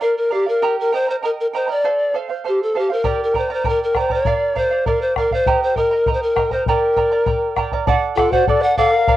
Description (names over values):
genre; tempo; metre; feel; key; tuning
andean folk, Andean ensemble; 99 BPM; 2/4; straight; G minor; A4 = 436 Hz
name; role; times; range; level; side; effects
breathy bright pan flute; melody; 0.0-9.2 s; G4 to F#5; -17 LUFS; left 1 dB; cassette tape
charango; accompaniment; 0.0-9.2 s; G4 to Bb5; -22 LUFS; right 6 dB; cassette tape
bombo; percussion; 3.0-9.2 s; none; -23 LUFS; left 3 dB; none
breathy mellow large quena; second line; 8.2-9.2 s; F4 to D5; -20 LUFS; left 6 dB; cassette tape
room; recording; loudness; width
moderate studio reverb, RT60 0.5 s; home recording on cassette; -16 LUFS; side -14 dB against mid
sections
0.0-7.9 A section; 7.9-9.2 B section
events
none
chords
0.0 Bb; 0.6 Eb; 1.8 F; 3.0 Gm; 4.3 Bb; 5.5 Eb; 6.7 Gm; 7.9 D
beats
0.01 | 0.61 1.22 | 1.83 2.44 | 3.04 3.65 | 4.25 4.86 | 5.46 6.07 | 6.67 7.27 | 7.87 8.48 | 9.08